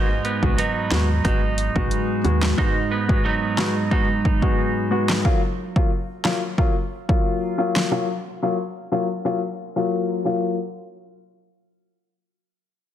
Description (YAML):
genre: dancehall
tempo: 90 BPM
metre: 4/4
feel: straight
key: F# major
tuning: A4 = 436 Hz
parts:
  - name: warm baby grand piano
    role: accompaniment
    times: 0.0-10.6 s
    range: F#3 to F#4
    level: -24 LUFS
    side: left 3 dB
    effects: sidechain pumping, low-pass filter
  - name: twelve-string electric guitar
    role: arpeggios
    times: 0.0-5.8 s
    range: G#2 to D#4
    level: -24 LUFS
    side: right 4 dB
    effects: low-pass filter, digital delay
  - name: woody FM bass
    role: bass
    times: 0.0-2.5 s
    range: G#1 to D#2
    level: -22 LUFS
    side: equal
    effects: none
  - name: deep house drum kit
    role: drums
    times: 0.2-7.9 s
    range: handclaps, hi-hat, kick drum, snare drum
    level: -22 LUFS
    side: equal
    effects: overdrive
room: light reverb, digital ambience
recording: dense, heavily limited modern master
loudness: -19 LUFS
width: side -10 dB against mid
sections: 0.0-10.6 A section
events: filter sweep 0.0-10.6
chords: 0.0 G#m7; 5.2 F#maj7